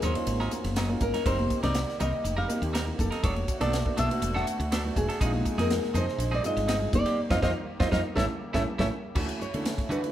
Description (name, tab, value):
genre	electric jazz fusion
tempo	122 BPM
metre	4/4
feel	straight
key	unclear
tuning	A4 = 444 Hz
part	nylon-string guitar	melody	0.0-10.1 s	Ab4 to F#5	-30 LUFS	right 1 dB	none
part	warm concert grand piano	accompaniment	0.0-10.1 s	Ab3 to A4	-35 LUFS	right 3 dB	none
part	lush unison pad	sustained chords	0.0-10.1 s	C3 to G4	-40 LUFS	left 1 dB	chorus
part	clean electric guitar	stabs	0.0-10.1 s	E3 to Bb4	-36 LUFS	right 2 dB	none
part	woody fretless electric bass	bass	0.0-10.1 s	E1 to D3	-31 LUFS	equal	none
part	tight funk drum kit	drums	0.0-10.1 s	crash cymbal, hi-hat, kick drum, ride cymbal, snare drum	-32 LUFS	equal	none
part	congas	percussion	0.0-10.0 s	none	-34 LUFS	left 2 dB	none
room	moderate stone room reverb, RT60 1.3 s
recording	band playing live in one room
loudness	-25 LUFS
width	side -12 dB against mid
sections	0.0-9.2 A section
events	drum fill 0.6-1.3, 8.7-9.2; band accent 7.2-9.2; grand piano fill 8.4-9.2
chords	0.0 Ab9sus4; 1.3 F9sus4; 3.2 E9sus4; 5.2 Bb9sus4; 6.9 F9sus4; 8.2 A7b9; 9.2 Dmaj9